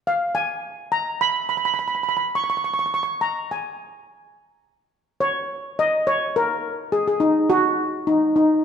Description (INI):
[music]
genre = calypso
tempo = 105 BPM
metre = 4/4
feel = straight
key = F# major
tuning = A4 = 439 Hz
[part]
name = steel pan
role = solo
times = 0.0-8.5 s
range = D#4 to C#6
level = -20 LUFS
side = equal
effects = none
[sound]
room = wet recital hall reverb, RT60 1.8 s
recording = none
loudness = -20 LUFS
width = side -7 dB against mid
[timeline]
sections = 0.0-4.9 A section; 4.9-8.6 B section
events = steel pan solo 4.9-8.6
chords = none